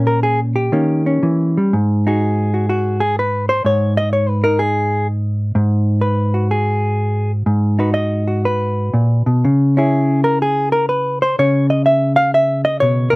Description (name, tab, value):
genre	solo jazz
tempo	124 BPM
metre	4/4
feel	swing 66% on 8ths, rubato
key	G# minor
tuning	A4 = 441 Hz
part	hollow-body jazz guitar	solo	0.0-13.2 s	G#2 to E#5	-14 LUFS	equal	none
room	moderate small room ambience, RT60 0.5 s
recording	rough home demo mix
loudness	-14 LUFS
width	side -23 dB against mid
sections	0.0-1.7 A section; 1.7-13.2 B section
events	hollow-body jazz guitar solo 1.7-13.2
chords	0.0 A#m7; 0.7 D#7; 1.7 G#m7; 9.4 C#m7